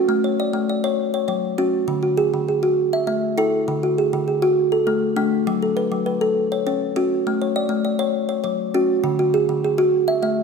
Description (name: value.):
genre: southern african traditional, mbira-style interlocking cycle.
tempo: 134 BPM (dotted quarters).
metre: 12/8.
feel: straight.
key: unclear.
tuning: A4 = 437 Hz.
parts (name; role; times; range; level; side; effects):
kalimba; solo; 0.0-10.4 s; D3 to E5; -18 LUFS; equal; none.
room: moderate scoring stage reverb, RT60 1.5 s.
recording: recorded in a church or concert hall.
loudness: -18 LUFS.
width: side -5 dB against mid.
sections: 0.1-10.4 A section.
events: none.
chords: 0.1 A; 1.0 F#5; 1.9 D; 2.8 A5; 3.7 D; 5.5 F#m; 7.3 A; 8.2 F#5; 9.0 D.